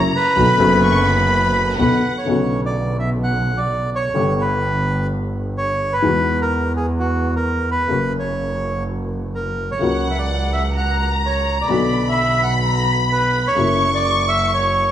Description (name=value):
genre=tango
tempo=127 BPM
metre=4/4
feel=rubato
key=B harmonic minor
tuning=A4 = 440 Hz
part: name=clear studio violin section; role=second line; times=0.0-2.3, 9.8-14.9 s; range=F#5 to C#6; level=-22 LUFS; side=left 2 dB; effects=none
part: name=clear upright piano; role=accompaniment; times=0.0-14.9 s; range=F#1 to G4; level=-22 LUFS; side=left 2 dB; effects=none
part: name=bright double bass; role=bass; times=0.0-14.9 s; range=F#1 to E2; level=-22 LUFS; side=right 1 dB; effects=none
part: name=bandoneon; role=melody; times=0.2-14.9 s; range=F#4 to A#5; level=-20 LUFS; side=right 1 dB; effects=none
room=wet recital hall reverb, RT60 1.4 s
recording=recorded in a church or concert hall, nothing above 10.4 kHz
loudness=-16 LUFS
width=side -10 dB against mid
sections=0.0-2.3 A section; 2.3-14.9 A section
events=none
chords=0.4 Bm; 2.3 Bmadd9; 4.2 G; 6.0 Eadd9; 7.9 F#; 11.7 Bm; 13.6 F#7